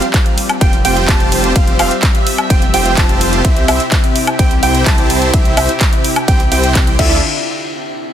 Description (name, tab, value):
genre	EDM, festival progressive house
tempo	127 BPM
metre	4/4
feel	straight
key	unclear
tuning	A4 = 436 Hz
part	lush unison pad	sustained chords	0.0-7.2 s	C3 to E5	-20 LUFS	left 1 dB	chorus, sidechain pumping
part	clear grand piano	arpeggios	0.0-7.2 s	E5 to A5	-20 LUFS	right 3 dB	sidechain pumping, ping-pong delay
part	supersaw chords	riff	0.0-7.2 s	C4 to A5	-18 LUFS	right 1 dB	sidechain pumping, ping-pong delay
part	big-room dance drum kit	drums	0.0-7.1 s	crash cymbal, handclaps, hi-hat, ride cymbal, woodblock	-18 LUFS	left 1 dB	none
part	electronic kick drum	drums	0.1-7.1 s	none	-13 LUFS	equal	none
part	detuned saw bass	bass	0.6-7.2 s	F1 to D2	-18 LUFS	equal	sidechain pumping
room	light reverb, digital ambience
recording	dense, heavily limited modern master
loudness	-10 LUFS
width	side -10 dB against mid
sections	0.0-7.2 A section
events	drop 0.0-7.2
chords	0.0 Fsus2; 3.4 C; 7.0 Dmadd9; 7.2 N.C.